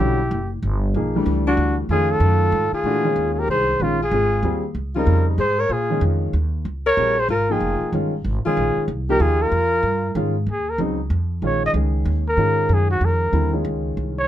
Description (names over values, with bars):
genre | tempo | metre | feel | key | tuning
modal jazz | 189 BPM | 3/4 | swing 64% on 8ths | Bb dorian, Eb dorian from 10.5 s | A4 = 437 Hz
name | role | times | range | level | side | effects
breathy trumpet | melody | 0.0-14.3 s | F4 to Eb5 | -21 LUFS | right 1 dB | none
warm alto saxophone | second line | 0.0-10.2 s | Db4 to Bb4 | -26 LUFS | left 4 dB | none
warm grand piano | accompaniment | 0.0-14.2 s | Db3 to G5 | -24 LUFS | left 1 dB | none
upright bass | bass | 0.0-14.3 s | F1 to Bb2 | -22 LUFS | equal | none
room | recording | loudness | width
light reverb | close, detailed microphones | -18 LUFS | side -12 dB against mid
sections
0.0-2.9 A section; 2.9-10.5 B section; 10.5-14.3 C section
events
trumpet solo 10.5-14.3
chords
0.0 Em9; 1.9 F7alt; 2.9 Bbm11; 10.5 Eb13sus4